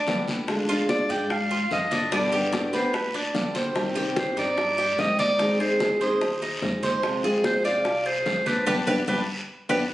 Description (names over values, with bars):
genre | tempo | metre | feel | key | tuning
latin, Cuban son and guajira | 147 BPM | 4/4 | straight | unclear | A4 = 440 Hz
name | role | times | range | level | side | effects
clear clarinet | melody | 0.0-9.8 s | Ab4 to G5 | -25 LUFS | equal | none
Cuban tres | arpeggios | 0.0-9.8 s | D4 to F5 | -30 LUFS | right 2 dB | none
upright bass | bass | 0.0-9.8 s | G1 to Ab2 | -36 LUFS | equal | none
picked steel-string acoustic guitar | accompaniment | 0.1-9.8 s | B2 to Ab4 | -27 LUFS | left 1 dB | none
bongos | percussion | 0.1-9.8 s | none | -32 LUFS | left 2 dB | none
congas | percussion | 0.1-9.8 s | none | -35 LUFS | equal | none
guiro | percussion | 0.1-9.8 s | none | -35 LUFS | left 1 dB | none
room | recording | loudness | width
moderate studio reverb, RT60 0.8 s | recorded on a phone in the room, studio reverb, nothing above 11.0 kHz | -22 LUFS | side -15 dB against mid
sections
0.0-9.9 A section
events
band accent 8.7-9.9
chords
0.5 Ddim; 2.1 G; 3.8 Cm; 5.4 Ab; 7.0 Fm; 8.7 G